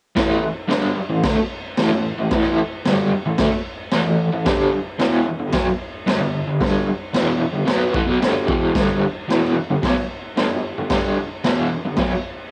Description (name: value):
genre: garage rock duo or trio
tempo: 112 BPM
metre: 4/4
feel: straight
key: unclear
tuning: A4 = 440 Hz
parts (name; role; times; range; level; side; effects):
- crunchy overdriven guitar; riff; 0.2-12.2 s; E2 to B3; -21 LUFS; equal; tremolo
- raw garage drum kit; drums; 0.2-12.1 s; crash cymbal, kick drum, snare drum; -25 LUFS; equal; none
room: light reverb, small room ambience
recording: home recording on cassette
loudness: -20 LUFS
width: mono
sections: 0.2-12.5 A section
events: none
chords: 0.2 A5; 4.5 G5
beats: | 0.17 0.71 1.25 1.78 | 2.32 2.85 3.39 3.93 | 4.46 5.00 5.54 6.08 | 6.61 7.15 7.69 8.22 | 8.76 9.30 9.84 10.38 | 10.91 11.45 11.99